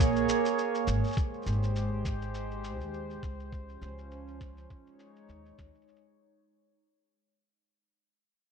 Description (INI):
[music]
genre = folktronica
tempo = 102 BPM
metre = 4/4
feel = swing 56% on 16ths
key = Ab major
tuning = A4 = 440 Hz
[part]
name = warbly tape-like pad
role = sustained chords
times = 0.0-5.9 s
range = F3 to Db5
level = -32 LUFS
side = right 5 dB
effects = chorus, built-in reverb
[part]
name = upright bass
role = bass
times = 0.0-5.7 s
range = Ab1 to Eb2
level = -34 LUFS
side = equal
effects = tube saturation
[part]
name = cabasa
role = drums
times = 0.0-6.0 s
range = none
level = -43 LUFS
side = left 1 dB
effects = low-pass filter on snare, low-pass filter on perc, low-pass filter on room
[part]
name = electronic kick drum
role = drums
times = 0.0-5.7 s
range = none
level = -30 LUFS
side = equal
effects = none
[sound]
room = light reverb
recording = none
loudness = -29 LUFS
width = side -6 dB against mid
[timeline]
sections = 0.0-5.9 A section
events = fade-out 0.0-5.9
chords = 0.0 Bbm7; 1.2 Abmaj7; 3.5 Dbmaj7; 4.7 Eb7sus4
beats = 0.58 | 1.17 1.76 2.35 2.93 | 3.52 4.11 4.70 5.29